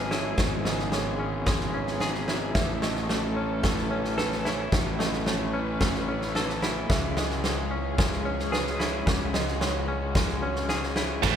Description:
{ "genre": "post-rock", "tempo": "111 BPM", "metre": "4/4", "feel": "straight", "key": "unclear", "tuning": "A4 = 440 Hz", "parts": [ { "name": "rich studio string section", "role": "sustained chords", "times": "0.0-11.4 s", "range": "E3 to C#5", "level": "-36 LUFS", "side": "left 2 dB", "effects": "none" }, { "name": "direct-recorded clean electric guitar", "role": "arpeggios", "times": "0.0-11.4 s", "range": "G#2 to A4", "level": "-32 LUFS", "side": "left 2 dB", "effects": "tremolo" }, { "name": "felt-muted upright piano", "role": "arpeggios", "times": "0.0-11.4 s", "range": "B4 to E5", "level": "-36 LUFS", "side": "right 5 dB", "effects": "none" }, { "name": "fuzz fingered electric bass", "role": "bass", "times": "0.0-11.3 s", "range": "G#1 to C#2", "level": "-31 LUFS", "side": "equal", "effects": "overdrive" }, { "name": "huge arena drum kit", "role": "drums", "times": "0.1-11.4 s", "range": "crash cymbal, kick drum, snare drum", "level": "-28 LUFS", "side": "equal", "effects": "none" }, { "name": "tight distorted guitar", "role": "riff", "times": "11.2-11.4 s", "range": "A2 to A3", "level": "-23 LUFS", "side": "right 13 dB", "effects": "distortion" } ], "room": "moderate church reverb, RT60 3.2 s", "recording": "recorded in a church or concert hall", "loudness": "-24 LUFS", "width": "side -8 dB against mid", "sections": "0.0-11.2 A section", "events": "none", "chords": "0.0 C#m/G#; 2.6 A; 6.9 C#m" }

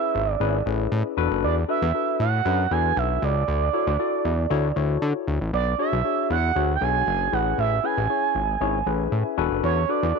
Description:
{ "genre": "early-eighties boogie funk", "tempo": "117 BPM", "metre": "4/4", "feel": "straight", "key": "unclear", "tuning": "A4 = 440 Hz", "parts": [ { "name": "expressive portamento lead", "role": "melody", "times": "0.0-10.2 s", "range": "C#5 to G#5", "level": "-25 LUFS", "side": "right 13 dB", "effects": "chorus, tape echo" }, { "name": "tine electric piano", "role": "accompaniment", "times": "0.0-10.2 s", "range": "C#4 to G#5", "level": "-27 LUFS", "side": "left 15 dB", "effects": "medium stereo tremolo" }, { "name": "fat analog bass", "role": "bass", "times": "0.1-10.1 s", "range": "E1 to D3", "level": "-24 LUFS", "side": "left 1 dB", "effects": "none" } ], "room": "light reverb, digital ambience", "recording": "1960s-style stereo with parts hard left and right, nothing above 10.5 kHz", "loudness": "-21 LUFS", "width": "side -4 dB against mid", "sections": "0.0-10.2 A section", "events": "tine electric piano fill 8.9-9.6", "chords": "0.0 Amaj7; 1.2 E7sus4; 3.5 Dmaj7; 5.5 Bm69; 7.3 Amaj7; 9.4 E7sus4" }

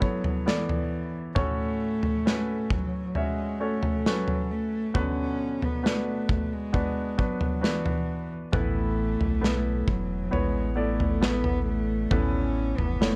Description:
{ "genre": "pop ballad", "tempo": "67 BPM", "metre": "4/4", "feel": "straight", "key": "A major", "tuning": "A4 = 440 Hz", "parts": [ { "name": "warm cello", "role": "melody", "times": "0.0-13.2 s", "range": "E3 to C#4", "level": "-33 LUFS", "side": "equal", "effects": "none" }, { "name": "bright concert grand piano", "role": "accompaniment", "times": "0.0-13.2 s", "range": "A2 to E5", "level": "-33 LUFS", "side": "equal", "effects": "none" }, { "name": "natural country drum kit", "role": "drums", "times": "0.0-13.2 s", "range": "kick drum, snare drum, toms", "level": "-30 LUFS", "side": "equal", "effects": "none" }, { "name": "sub bass with octave", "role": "bass", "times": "8.5-13.2 s", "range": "E1 to B1", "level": "-32 LUFS", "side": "equal", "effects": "none" } ], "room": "light reverb", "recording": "worn, warbling old tape, cassette tape, warbly pitch drift", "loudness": "-27 LUFS", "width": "mono", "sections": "0.0-13.2 A section", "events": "none", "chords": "0.0 Asus2; 1.4 F#m/A; 4.9 Bm; 8.5 Asus2" }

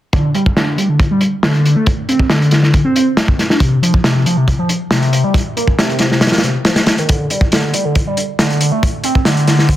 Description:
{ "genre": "breakbeat, breaks", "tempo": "138 BPM", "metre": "4/4", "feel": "straight", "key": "D phrygian", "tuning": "A4 = 441 Hz", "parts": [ { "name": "overdriven synth lead", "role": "riff", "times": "0.1-9.7 s", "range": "C3 to D4", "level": "-14 LUFS", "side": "equal", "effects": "distortion, phaser, digital delay" }, { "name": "crunchy breakbeat drum kit", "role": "drums", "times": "0.1-9.8 s", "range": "hi-hat, kick drum, snare drum", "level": "-14 LUFS", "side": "equal", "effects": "low-pass filter on kick, low-pass filter on hats, low-pass filter on snare, low-pass filter on room" } ], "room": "moderate plate reverb, RT60 1.1 s", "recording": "dense, heavily limited modern master", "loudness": "-11 LUFS", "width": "side -13 dB against mid", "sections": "0.1-9.8 A section", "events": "none", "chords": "none" }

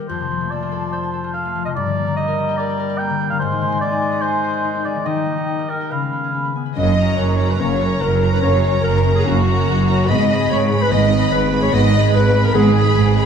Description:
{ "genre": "cinematic, heroic adventure film score", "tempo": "145 BPM", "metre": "4/4", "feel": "straight", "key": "F# major from 6.8 s", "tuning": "A4 = 440 Hz", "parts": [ { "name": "clear clarinet", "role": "second line", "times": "0.0-13.1 s", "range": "G3 to D#5", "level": "-25 LUFS", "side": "left 1 dB", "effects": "none" }, { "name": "concert harp", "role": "arpeggios", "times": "0.0-13.3 s", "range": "F2 to B5", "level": "-23 LUFS", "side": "left 8 dB", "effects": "none" }, { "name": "mellow hollow large flute ensemble", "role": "second line", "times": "0.1-13.1 s", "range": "F#4 to Cb6", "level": "-25 LUFS", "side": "right 1 dB", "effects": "none" }, { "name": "warm cor anglais", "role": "second line", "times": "0.1-6.5 s", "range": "Bb4 to G5", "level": "-23 LUFS", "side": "right 2 dB", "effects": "none" }, { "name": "warm studio violin section", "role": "second line", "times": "6.8-13.3 s", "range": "F#4 to D#5", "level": "-24 LUFS", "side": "left 2 dB", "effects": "none" }, { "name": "mellow French horn section", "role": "sustained chords", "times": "6.8-12.7 s", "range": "G#3 to C#4", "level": "-26 LUFS", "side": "left 3 dB", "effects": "none" }, { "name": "rich symphonic cello section", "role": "bass", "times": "6.8-13.3 s", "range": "F#2 to G#2", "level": "-20 LUFS", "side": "right 3 dB", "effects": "none" }, { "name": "rich symphonic double bass section", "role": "bass", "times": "6.8-13.3 s", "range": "F#1 to G#1", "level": "-19 LUFS", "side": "right 4 dB", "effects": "none" }, { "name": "warm symphonic violin section", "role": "melody", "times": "7.0-13.3 s", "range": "A#5 to B5", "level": "-26 LUFS", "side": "left 4 dB", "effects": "none" }, { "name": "dark symphonic viola section", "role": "accompaniment", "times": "7.0-13.3 s", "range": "G#3 to A#4", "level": "-25 LUFS", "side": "right 2 dB", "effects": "none" } ], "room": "moderate scoring stage reverb, RT60 1.9 s", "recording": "none", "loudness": "-15 LUFS", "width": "side -7 dB against mid", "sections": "0.0-6.8 A section; 6.8-13.3 B section", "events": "none", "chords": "0.1 F; 1.8 Gm; 3.4 Ab; 5.1 Eb; 5.9 Db7; 6.8 F#; 10.1 G#m" }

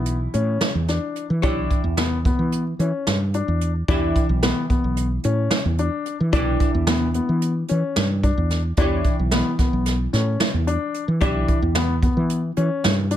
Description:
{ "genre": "progressive instrumental, band music in an uneven meter", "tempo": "221 BPM (eighths)", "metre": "9/8", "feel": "straight", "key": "E dorian", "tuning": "A4 = 440 Hz", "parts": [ { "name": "archtop guitar, miked and amplified", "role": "accompaniment", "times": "0.0-13.2 s", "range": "E3 to E5", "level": "-29 LUFS", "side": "right 1 dB", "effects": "double-tracked left and right" }, { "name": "warm grand piano", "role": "arpeggios", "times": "0.0-13.2 s", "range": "B3 to D4", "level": "-25 LUFS", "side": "left 5 dB", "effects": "none" }, { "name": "woody fretless electric bass", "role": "bass", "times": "0.0-13.2 s", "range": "B1 to E3", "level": "-22 LUFS", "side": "right 1 dB", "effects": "none" }, { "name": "jazz brush drum kit", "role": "drums", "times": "0.1-13.2 s", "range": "hi-hat, kick drum, snare drum", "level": "-22 LUFS", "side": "right 1 dB", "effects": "none" } ], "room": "light reverb", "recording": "none", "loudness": "-19 LUFS", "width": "side -11 dB against mid", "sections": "0.0-13.2 A section", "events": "none", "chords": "0.0 Em7" }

